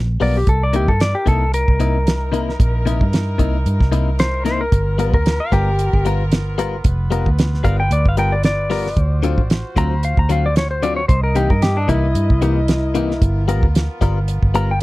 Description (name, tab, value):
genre	straight-eighth soul blues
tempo	113 BPM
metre	4/4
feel	swing 55% on 16ths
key	unclear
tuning	A4 = 440 Hz
part	vintage muted fingered electric bass	bass	0.0-14.8 s	F1 to G2	-18 LUFS	equal	none
part	clean lap steel guitar	melody	0.2-14.8 s	D4 to Bb5	-21 LUFS	left 1 dB	none
part	direct-recorded clean electric guitar	stabs	0.2-14.7 s	C3 to A#4	-21 LUFS	left 5 dB	lush chorus
part	damped 70s drum kit	drums	0.2-14.8 s	hi-hat, kick drum, snare drum	-18 LUFS	right 1 dB	none
part	clear horn section	sustained chords	0.5-14.8 s	B3 to D#5	-31 LUFS	right 1 dB	none
room	little or no reverb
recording	dry, close 1970s-style studio recording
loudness	-15 LUFS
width	side -19 dB against mid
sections	0.0-14.8 A section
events	electric slide guitar solo 0.0-14.8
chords	0.5 C7#9; 4.7 G7#9; 9.0 D7#9; 11.1 C7#9; 13.2 G7#9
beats	| 0.47 1.00 1.54 2.07 | 2.60 3.13 3.66 4.19 | 4.72 5.25 5.78 6.31 | 6.84 7.37 7.90 8.44 | 8.97 9.50 10.03 10.56 | 11.09 11.62 12.15 12.68 | 13.21 13.74 14.28 14.81